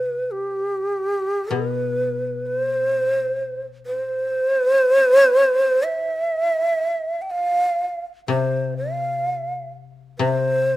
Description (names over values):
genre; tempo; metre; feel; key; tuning
japanese traditional, Japanese chamber music; free time; none; none; C ryukyu; A4 = 440 Hz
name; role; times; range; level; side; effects
breathy long shakuhachi; melody; 0.0-10.8 s; G4 to G5; -19 LUFS; right 1 dB; none
koto; accompaniment; 0.0-4.4, 8.3-10.8 s; B2 to C3; -27 LUFS; left 6 dB; none
room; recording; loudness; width
light reverb; close, detailed microphones; -18 LUFS; side -16 dB against mid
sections
0.0-10.8 A section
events
none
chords
none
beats
free time